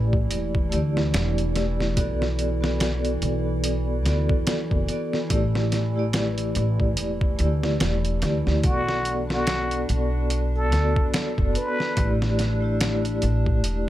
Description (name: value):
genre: trip hop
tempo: 72 BPM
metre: 4/4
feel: swing 58% on 16ths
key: B minor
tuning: A4 = 440 Hz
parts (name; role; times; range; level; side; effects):
- vibraphone with medium mallets; accompaniment; 0.0-13.9 s; A3 to D5; -27 LUFS; left 1 dB; tremolo, vintage 12-bit sampler grit, tape echo
- warbly tape-like pad; sustained chords; 0.0-13.9 s; E3 to E4; -33 LUFS; right 1 dB; chorus, built-in reverb
- upright bass; bass; 0.0-13.9 s; E1 to D2; -24 LUFS; equal; none
- trip hop sampler-style drum kit; drums; 0.1-13.9 s; hi-hat, kick drum, snare drum; -26 LUFS; equal; none
- trumpet with plunger mute; melody; 8.7-12.2 s; F#4 to B4; -29 LUFS; equal; tape echo
room: small room ambience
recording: none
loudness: -21 LUFS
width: side -14 dB against mid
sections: 0.0-13.9 A section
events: none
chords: 0.0 A7sus4; 2.0 Bm7; 5.3 A7sus4; 8.6 Bm7; 12.0 A7sus4